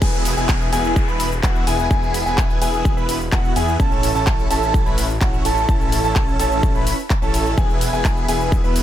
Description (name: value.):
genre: EDM, festival progressive house.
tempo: 127 BPM.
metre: 4/4.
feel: straight.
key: E major.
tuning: A4 = 440 Hz.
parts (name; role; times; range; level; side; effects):
warm concert grand piano; arpeggios; 0.0-8.8 s; F#5 to B5; -25 LUFS; equal; sidechain pumping, ping-pong delay.
big supersaw lead; riff; 0.0-8.8 s; B3 to B4; -23 LUFS; right 1 dB; phaser, cassette tape, sidechain pumping, ping-pong delay.
wide detuned saw bass; bass; 0.0-8.8 s; E1 to E2; -24 LUFS; equal; chorus, sidechain pumping, high-pass filter.
big-room dance drum kit; drums; 0.0-8.8 s; cabasa, crash cymbal, handclaps, hi-hat; -27 LUFS; equal; none.
electronic kick drum; drums; 0.0-8.6 s; none; -19 LUFS; equal; none.
downlifter; sound effects; 0.0-3.8 s; none; -32 LUFS; left 1 dB; none.
room: little or no reverb.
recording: none.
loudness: -16 LUFS.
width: side -11 dB against mid.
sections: 0.0-8.8 A section.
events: drop 0.0-8.8.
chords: 0.0 E; 3.8 A; 7.6 E.